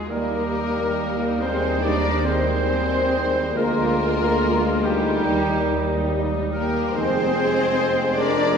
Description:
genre	classical, slow romantic movement for symphony orchestra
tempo	70 BPM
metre	4/4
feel	rubato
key	Eb major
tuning	A4 = 441 Hz
part	warm symphonic violin section	melody	0.0-8.6 s	G3 to D4	-29 LUFS	left 4 dB	none
part	small flute group	second line	0.0-8.6 s	Eb4 to Bb4	-28 LUFS	left 1 dB	none
part	warm oboe	second line	0.0-8.6 s	G4 to D5	-31 LUFS	right 5 dB	none
part	warm symphonic violin section	second line	0.0-8.6 s	G4 to D5	-26 LUFS	left 2 dB	none
part	rich symphonic cello section	bass	0.0-8.6 s	G3 to D4	-28 LUFS	right 2 dB	none
part	warm clarinet	second line	0.1-8.6 s	Ab4 to Bb4	-33 LUFS	right 2 dB	none
part	clear symphonic viola section	accompaniment	0.1-8.6 s	G3 to F4	-30 LUFS	equal	none
part	mellow bassoon	accompaniment	0.1-8.6 s	G3 to Ab3	-29 LUFS	equal	none
part	clear trombone section	sustained chords	0.1-7.3 s	Eb3 to Ab3	-32 LUFS	right 4 dB	none
part	mellow French horn section	sustained chords	0.1-7.3 s	Bb3 to Bb4	-35 LUFS	left 2 dB	none
part	clear tuba	bass	0.1-8.6 s	F1 to Eb2	-28 LUFS	right 2 dB	none
part	warm symphonic double bass section	bass	0.1-8.6 s	D2 to F2	-29 LUFS	right 1 dB	none
room	wet scoring stage reverb, RT60 2.2 s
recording	heard from further back in the room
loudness	-19 LUFS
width	side -6 dB against mid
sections	0.1-8.6 A section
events	none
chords	0.1 Eb; 3.6 Bb7/D; 5.3 Eb; 7.0 Fm7

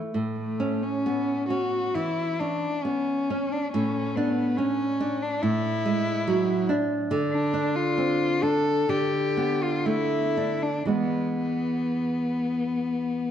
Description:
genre	romantic duo for cello and classical guitar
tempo	55-72 BPM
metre	4/4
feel	rubato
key	A major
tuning	A4 = 440 Hz
part	nylon-string guitar	accompaniment	0.0-13.3 s	A2 to D4	-26 LUFS	right 2 dB	none
part	rich cello	melody	0.4-13.3 s	A3 to A4	-26 LUFS	left 3 dB	slapback echo
room	moderate scoring stage reverb, RT60 1.6 s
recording	worn, warbling old tape, cassette tape, warbly pitch drift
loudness	-23 LUFS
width	side -9 dB against mid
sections	0.1-13.3 A section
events	none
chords	0.1 A; 3.7 E7/A; 7.1 Dm69; 10.9 E

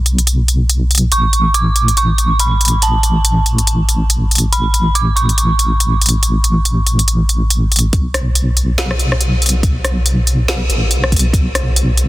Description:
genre	deep dubstep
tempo	141 BPM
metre	4/4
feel	swing 59% on 16ths, half-time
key	unclear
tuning	A4 = 440 Hz
part	deep soft wobble bass	bass	0.0-12.1 s	A1 to B1	-14 LUFS	equal	chorus, tube saturation
part	deep house drum kit	drums	0.1-12.1 s	hi-hat, rim click, snare drum	-16 LUFS	equal	soft clipping on snare
part	dark detuned synth bell	melody	1.1-7.5 s	A5 to D6	-19 LUFS	right 3 dB	chorus, vintage 12-bit sampler grit, dub echo
part	electronic kick drum	drums	7.9-11.4 s	none	-15 LUFS	equal	none
room	light reverb, digital ambience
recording	dense, heavily limited modern master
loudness	-12 LUFS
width	side -17 dB against mid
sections	0.0-7.9 A section; 7.9-12.1 B section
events	build-up 7.9-12.1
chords	0.0 N.C.; 1.1 A; 7.9 N.C.

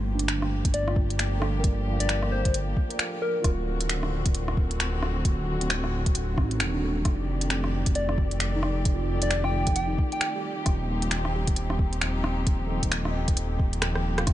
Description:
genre	future garage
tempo	133 BPM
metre	4/4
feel	swing 61% on 16ths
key	unclear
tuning	A4 = 440 Hz
part	muted felt-like synth keys	accompaniment	0.0-14.3 s	A3 to G5	-34 LUFS	right 3 dB	chorus, sidechain pumping, low-pass filter, digital delay
part	muted chamber string section	sustained chords	0.0-14.3 s	D3 to D5	-34 LUFS	left 2 dB	sidechain pumping
part	dark detuned saw bass	bass	0.0-14.3 s	D1 to A1	-28 LUFS	equal	tube saturation, sidechain pumping
part	organic electronic drum kit	drums	0.2-14.3 s	finger snaps, hi-hat, rim click	-30 LUFS	equal	small room ambience
part	electronic kick drum	drums	0.6-14.3 s	none	-25 LUFS	equal	small room ambience
part	soft struck synth lead	melody	0.7-3.5, 8.0-10.4 s	Bb4 to G5	-33 LUFS	left 1 dB	chorus, dub echo
room	little or no reverb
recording	nothing above 10.6 kHz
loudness	-24 LUFS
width	side -13 dB against mid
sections	0.0-14.3 A section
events	filter sweep on synth keys 0.0-14.3; kick drops out 13.8-14.3; drum fill 13.8-14.3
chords	0.0 Gm9; 3.4 D7b9; 7.1 F13; 10.7 Eb69

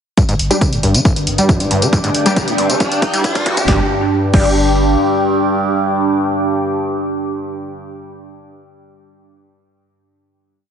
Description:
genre	driving peak-time techno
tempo	137 BPM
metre	4/4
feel	straight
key	unclear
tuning	A4 = 438 Hz
part	overdriven acid bass	riff	0.2-4.5 s	G1 to G3	-19 LUFS	equal	distortion, sidechain pumping, tape echo
part	overtone-sweeping drone	drone	1.0-7.6 s	G2	-22 LUFS	right 1 dB	chorus, built-in reverb, phaser, sidechain pumping
part	electronic kick drum	drums	0.2-4.5 s	none	-16 LUFS	equal	none
part	punchy analog drum machine	drums	0.2-4.5 s	crash cymbal, hi-hat, snare drum, tambourine	-21 LUFS	left 1 dB	overdrive, sidechain pumping on hats, high-pass filter on hats, sidechain pumping on perc, high-pass filter on perc, high-pass filter on snare, sidechain pumping on cymbals, high-pass filter on cymbals, high-pass filter on room
part	riser	sound effects	1.2-3.7 s	none	-24 LUFS	right 1 dB	none
part	deep dark ambient pad	texture	1.0-7.8 s	D4 to D6	-19 LUFS	right 1 dB	chorus, built-in reverb, sidechain pumping
part	saturated sub bass	bass	0.3-5.0 s	G1	-21 LUFS	equal	sidechain pumping, low-pass filter
part	rave stab	stabs	0.5-8.3 s	G3 to G4	-21 LUFS	left 2 dB	chorus, built-in reverb, sidechain pumping, tape echo
room	moderate lush hall reverb, RT60 1.9 s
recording	heavily compressed radio sound, high-pass filter, nothing above 10.7 kHz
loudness	-13 LUFS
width	side -8 dB against mid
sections	0.2-3.7 build; 3.7-7.2 final chord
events	build-up 0.2-3.7; filter sweep on acid bass 0.2-3.7; riser 1.2-3.7; drum fill 1.9-3.7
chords	0.2 G5

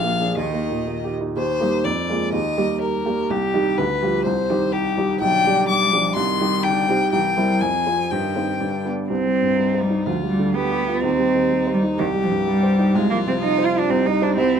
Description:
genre	quick classical-period movement for piano trio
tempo	125 BPM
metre	2/4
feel	straight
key	Eb major, C minor from 5.2 s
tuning	A4 = 437 Hz
part	rich violin	melody	0.0-14.6 s	Eb4 to D6	-23 LUFS	left 6 dB	none
part	rich cello	second line	0.0-14.6 s	C3 to F4	-22 LUFS	right 2 dB	none
part	clear baby grand piano	accompaniment	0.0-14.6 s	Bb1 to D5	-22 LUFS	right 2 dB	none
room	moderate studio reverb, RT60 0.9 s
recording	none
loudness	-18 LUFS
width	side -7 dB against mid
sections	0.0-1.4 A section; 1.4-9.1 B section; 9.1-14.6 A section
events	none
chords	0.4 Eb; 1.9 Bb7/F; 2.3 Eb; 3.3 Cm; 3.8 G7/D; 4.3 Cm; 5.2 G/B; 6.2 Cm; 7.1 C7; 7.6 Fm; 8.1 Cm/G; 8.6 G; 9.1 Cm; 10.1 G7/D; 11.0 Cm/Eb; 12.0 Cm; 12.9 F5/C; 13.9 Cm

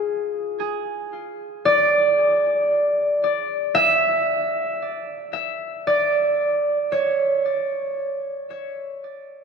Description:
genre	ambient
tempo	57 BPM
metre	3/4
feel	straight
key	unclear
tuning	A4 = 440 Hz
part	concert harp	solo	1.7-8.8 s	C#5 to E5	-19 LUFS	right 1 dB	ping-pong delay
room	wet cathedral reverb, RT60 5.1 s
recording	in a vast, echoing space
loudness	-19 LUFS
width	side -6 dB against mid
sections	0.0-9.4 A section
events	fade-out 3.8-9.4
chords	0.0 C#m

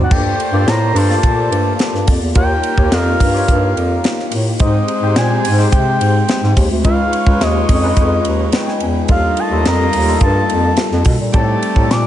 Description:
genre	polished 1980s jazz-funk pop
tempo	107 BPM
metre	4/4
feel	straight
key	G minor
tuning	A4 = 440 Hz
part	expressive synth lead	melody	0.0-12.1 s	Eb5 to D6	-20 LUFS	equal	chorus
part	overdriven tine electric piano	accompaniment	0.0-12.1 s	G3 to G#5	-19 LUFS	left 3 dB	ensemble chorus
part	breathy bass clarinet	bass	0.0-12.1 s	C#2 to C3	-16 LUFS	equal	none
part	warm horn section	second line	0.1-12.1 s	G3 to Eb5	-26 LUFS	equal	none
part	tight funk drum kit	drums	0.1-12.0 s	crash cymbal, hi-hat, kick drum, ride cymbal, snare drum	-17 LUFS	equal	gated reverb
room	studio ambience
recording	nothing above 10.4 kHz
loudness	-12 LUFS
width	side -12 dB against mid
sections	0.1-12.1 A section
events	tine electric piano fill 8.3-9.1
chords	0.1 Gm9; 2.4 Eb9; 4.6 Abmaj7; 6.9 C#9; 9.1 Ebmaj9#11; 11.3 Am7b5

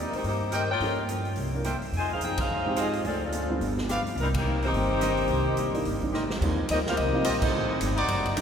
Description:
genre	jazz, big band swing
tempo	214 BPM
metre	4/4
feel	swing 60% on 8ths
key	C minor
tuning	A4 = 442 Hz
part	mellow saxophone section	melody	0.0-7.9 s	Eb3 to Ab5	-29 LUFS	left 2 dB	none
part	vintage hollow-body jazz guitar	accompaniment	0.0-8.4 s	G2 to Ab4	-36 LUFS	left 3 dB	none
part	warm baby grand piano	accompaniment	0.0-8.4 s	G3 to Bb4	-34 LUFS	right 2 dB	none
part	upright bass	bass	0.0-8.4 s	F#1 to Ab2	-31 LUFS	right 1 dB	none
part	swinging big-band drum kit	drums	0.1-8.4 s	crash cymbal, hi-hat, kick drum, ride cymbal, rim click, snare drum	-34 LUFS	right 1 dB	none
part	clear trumpet section	stabs	0.5-8.3 s	Eb4 to G5	-34 LUFS	equal	none
part	warm trombone section	second line	4.6-7.9 s	Eb3 to F4	-33 LUFS	right 2 dB	none
room	wet cathedral reverb, RT60 4.1 s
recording	recorded in a church or concert hall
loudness	-24 LUFS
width	side -7 dB against mid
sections	0.0-6.4 A section; 6.4-8.4 B section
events	band accent 2.3, 4.3, 7.4; drum fill 6.1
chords	0.0 Eb6; 0.8 Gm7b5; 1.4 C7; 1.9 Fm7; 3.0 Dm7; 3.6 G7; 4.2 Cm7; 6.4 Eb69; 7.5 Am7b5

